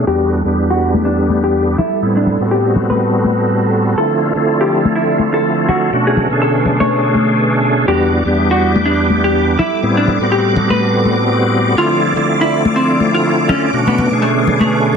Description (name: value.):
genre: deep house.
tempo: 123 BPM.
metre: 4/4.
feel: swing 58% on 16ths.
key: E minor.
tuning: A4 = 440 Hz.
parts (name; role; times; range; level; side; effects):
warm analog pad; sustained chords; 0.0-15.0 s; D3 to D5; -22 LUFS; right 2 dB; chorus.
bright tonewheel organ; stabs; 0.0-15.0 s; E2 to G#4; -14 LUFS; equal; chorus vibrato, slow rotary speaker.
string machine, violins; texture; 0.0-15.0 s; A4 to D6; -25 LUFS; right 2 dB; ensemble chorus.
vintage hollow-body jazz guitar; melody; 0.1-15.0 s; A3 to C#5; -18 LUFS; equal; analog delay.
congas; percussion; 0.9-14.7 s; none; -20 LUFS; left 4 dB; none.
room: moderate plate reverb, RT60 3.2 s.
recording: dense, heavily limited modern master, low-pass filter.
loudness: -12 LUFS.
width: side -6 dB against mid.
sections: 0.0-15.0 A section.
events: filter sweep on tonewheel organ 0.0-15.0; filter sweep on analog synth pad 0.0-15.0; filter sweep 0.0-15.0.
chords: 0.1 Em7; 1.8 Am7; 4.0 Dm7; 5.9 Bm7; 7.9 Em7; 9.6 Am7; 11.8 Dm7; 13.7 Bm7.